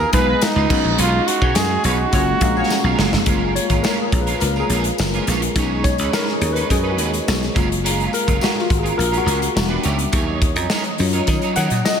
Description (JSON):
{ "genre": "polished 1980s jazz-funk pop", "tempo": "105 BPM", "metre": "4/4", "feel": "straight", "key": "F# major", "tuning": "A4 = 442 Hz", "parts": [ { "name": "brilliant trombone", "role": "melody", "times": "0.0-3.0 s", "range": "D#4 to B4", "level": "-21 LUFS", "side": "right 3 dB", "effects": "slapback echo" }, { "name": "tine electric piano", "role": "accompaniment", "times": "0.0-12.0 s", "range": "F#3 to F#5", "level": "-22 LUFS", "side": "left 4 dB", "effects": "analog chorus" }, { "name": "hollow soft pad", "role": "sustained chords", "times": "0.0-12.0 s", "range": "G3 to D#6", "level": "-30 LUFS", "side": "right 2 dB", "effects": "chorus" }, { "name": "electric guitar at the edge of break-up", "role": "riff", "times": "0.0-11.8 s", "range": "F#3 to C#5", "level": "-25 LUFS", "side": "right 5 dB", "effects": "ensemble chorus, slapback echo" }, { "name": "dry thumbed slap bass", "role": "bass", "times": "0.0-11.8 s", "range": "E1 to D#3", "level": "-21 LUFS", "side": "equal", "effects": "none" }, { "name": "modern studio drum kit", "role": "drums", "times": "0.1-12.0 s", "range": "crash cymbal, hi-hat, kick drum, snare drum", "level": "-21 LUFS", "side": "equal", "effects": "none" }, { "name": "tambourine", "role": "percussion", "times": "0.1-12.0 s", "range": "none", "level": "-35 LUFS", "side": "left 7 dB", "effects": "none" }, { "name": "clear horn section", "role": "second line", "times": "0.3-2.7 s", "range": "G#3 to C#5", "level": "-30 LUFS", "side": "equal", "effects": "none" } ], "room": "moderate lush hall reverb, RT60 2.7 s", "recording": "big arena sound", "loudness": "-16 LUFS", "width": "side -7 dB against mid", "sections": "0.0-3.3 A section; 3.3-12.0 B section", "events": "drum fill 2.7-3.3; tine electric piano solo 3.3-12.0", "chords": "0.0 C#9; 0.7 B69; 2.1 F#maj9; 5.6 B69; 7.6 F#maj9; 9.6 Em7; 10.1 D#m7" }